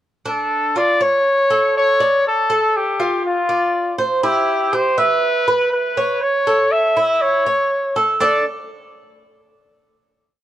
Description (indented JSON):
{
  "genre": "latin",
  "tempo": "121 BPM",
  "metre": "4/4",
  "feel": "straight",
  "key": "D harmonic minor",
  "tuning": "A4 = 439 Hz",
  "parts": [
    { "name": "warm trumpet", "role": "melody", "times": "0.3-8.4 s", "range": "F4 to E5", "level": "-16 LUFS", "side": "equal", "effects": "none" },
    { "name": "Cuban tres", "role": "arpeggios", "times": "0.3-8.4 s", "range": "D4 to E5", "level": "-20 LUFS", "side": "right 2 dB", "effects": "none" }
  ],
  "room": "light reverb",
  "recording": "worn, warbling old tape, cassette tape, warbly pitch drift",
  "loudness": "-15 LUFS",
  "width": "side -12 dB against mid",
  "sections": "0.3-8.2 verse; 8.2-10.2 final chord",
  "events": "none",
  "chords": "0.3 Dm; 1.3 A; 2.3 Dm/A; 3.2 Dm7/F; 4.2 Em; 5.2 E5; 6.2 A; 8.2 D5"
}